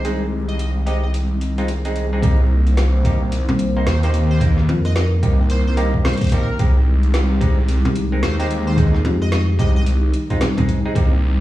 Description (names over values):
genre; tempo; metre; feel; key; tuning
glitch hop; 110 BPM; 4/4; swing 61% on 16ths; unclear; A4 = 441 Hz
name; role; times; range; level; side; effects
sync lead; melody; 0.0-9.8 s; Bb4 to Eb5; -32 LUFS; equal; chorus, tape echo
dark analog pad; sustained chords; 0.0-11.4 s; Ab3 to C5; -26 LUFS; left 1 dB; chorus, sidechain pumping
bright clav; stabs; 0.0-11.1 s; Ab3 to C5; -28 LUFS; right 1 dB; sidechain pumping, tape echo
phased detuned saw bass; bass; 0.0-11.4 s; Bb1 to Eb2; -17 LUFS; equal; phaser, tube saturation
drum and bass drum kit; drums; 0.0-11.1 s; hi-hat, rim click, snare drum; -28 LUFS; equal; none
electronic kick drum; drums; 2.2-11.1 s; none; -18 LUFS; equal; none
slap-like FM bass; bass; 3.5-10.8 s; C2 to F2; -18 LUFS; equal; none
room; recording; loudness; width
little or no reverb; played on a big sound system in a bare room, large studio reverb, vinyl crackle; -15 LUFS; side -15 dB against mid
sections
0.0-2.2 A section; 2.2-11.4 B section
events
drop 2.2-11.4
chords
0.0 Fm9/C (rootless); 2.2 Cm7; 6.6 Fm9/C